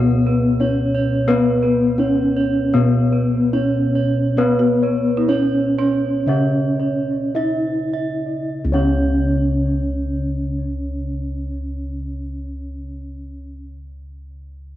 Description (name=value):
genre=Javanese gamelan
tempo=48-88 BPM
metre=4/4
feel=straight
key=unclear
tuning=A4 = 440 Hz
part: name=gamelan-type bronze metallophone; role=melody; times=0.0-13.6 s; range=B3-25c to E4-45c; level=-20 LUFS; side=left 1 dB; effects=cassette tape
part: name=folk marimba with medium mallets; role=second line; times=0.0-7.6 s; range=C#4 to F#4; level=-28 LUFS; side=right 7 dB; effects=cassette tape
part: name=gamelan-type bronze metallophone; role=accompaniment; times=0.0-13.6 s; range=C#3 to B3-25c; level=-28 LUFS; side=left 5 dB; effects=cassette tape
part: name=gamelan-type bossed gongs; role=arpeggios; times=0.0-13.6 s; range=B4-25c to E5-45c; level=-29 LUFS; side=left 6 dB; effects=cassette tape, analog delay
part: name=gamelan-type bronze metallophone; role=arpeggios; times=0.0-13.6 s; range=B4-25c to E5-45c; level=-28 LUFS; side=right 7 dB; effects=cassette tape
part: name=gamelan-type bossed gongs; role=bass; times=0.0-13.5 s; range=C#2 to B4-25c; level=-22 LUFS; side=equal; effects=none
room=light reverb, small room ambience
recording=home recording on cassette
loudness=-16 LUFS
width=side -13 dB against mid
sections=0.0-8.5 A section; 8.5-13.5 B section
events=slowing down 1.3-8.5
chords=none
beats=0.60 | 1.29 1.99 2.73 3.53 | 4.38 5.29 6.28 7.36 | 8.54 9.78 11.02 12.26